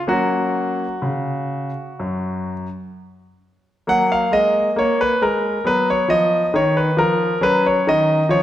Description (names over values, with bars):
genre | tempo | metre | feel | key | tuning
classical, baroque-style suite movement for grand piano | 62-69 BPM | 4/4 | rubato | F# major | A4 = 440 Hz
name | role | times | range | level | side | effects
bright concert grand piano | solo | 0.1-8.4 s | F#2 to F#5 | -16 LUFS | equal | none
room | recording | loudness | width
wet recital hall reverb, RT60 1.6 s | none | -16 LUFS | side -12 dB against mid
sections
0.0-3.9 A section; 3.9-8.4 B section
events
none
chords
0.1 F#; 5.7 Bmaj9#11; 7.4 C#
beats
| 0.06 1.02 1.98 2.93 | 3.86 4.77 5.65 6.53 | 7.42 8.30